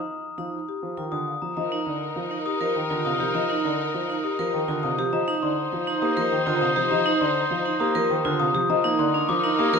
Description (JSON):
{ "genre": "classical, minimalist pattern music", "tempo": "101 BPM", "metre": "3/4", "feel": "straight", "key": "unclear", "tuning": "A4 = 442 Hz", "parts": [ { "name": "marimba with soft mallets", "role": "melody", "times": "0.4-9.8 s", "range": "G4 to F5", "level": "-31 LUFS", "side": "left 10 dB", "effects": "none" }, { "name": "clear concert grand piano", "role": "accompaniment", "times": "0.4-9.8 s", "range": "C3 to Bb3", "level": "-29 LUFS", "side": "right 2 dB", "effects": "none" }, { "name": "vibraphone with hard mallets", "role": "arpeggios", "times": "0.4-9.8 s", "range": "D4 to Bb4", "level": "-28 LUFS", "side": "right 5 dB", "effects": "none" }, { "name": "glockenspiel with soft plastic mallets", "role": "arpeggios", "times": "1.1-9.8 s", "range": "Bb5 to Eb6", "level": "-27 LUFS", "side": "left 4 dB", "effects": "none" }, { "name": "warm clarinet", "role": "second line", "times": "1.6-9.8 s", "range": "Bb4 to C5", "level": "-32 LUFS", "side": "right 3 dB", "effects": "none" }, { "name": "rich studio string section", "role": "sustained chords", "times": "1.6-9.8 s", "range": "Eb4 to C5", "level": "-30 LUFS", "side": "left 4 dB", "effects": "none" } ], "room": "wet recital hall reverb, RT60 1.4 s", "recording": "none", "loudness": "-22 LUFS", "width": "side -5 dB against mid", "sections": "0.0-1.6 A section; 1.6-9.8 B section", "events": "none", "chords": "0.0 Ebsus2; 1.6 F7sus4" }